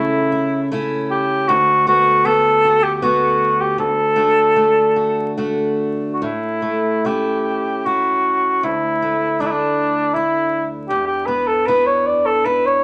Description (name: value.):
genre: celtic folk, Celtic slow air.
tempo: 71-80 BPM.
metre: 3/4.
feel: rubato.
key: A mixolydian.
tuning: A4 = 440 Hz.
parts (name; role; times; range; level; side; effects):
dark cor anglais; melody; 0.0-12.8 s; D4 to D5; -18 LUFS; equal; none.
picked steel-string acoustic guitar; accompaniment; 0.0-12.8 s; D2 to F#4; -24 LUFS; equal; none.
room: moderate studio reverb, RT60 0.5 s.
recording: vinyl crackle.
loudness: -17 LUFS.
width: mono.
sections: 0.0-6.2 A section; 6.2-12.8 B section.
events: none.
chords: 0.0 A/C#; 1.5 Bm7/D; 3.8 D; 6.2 A; 8.6 Dsus2; 10.9 E5.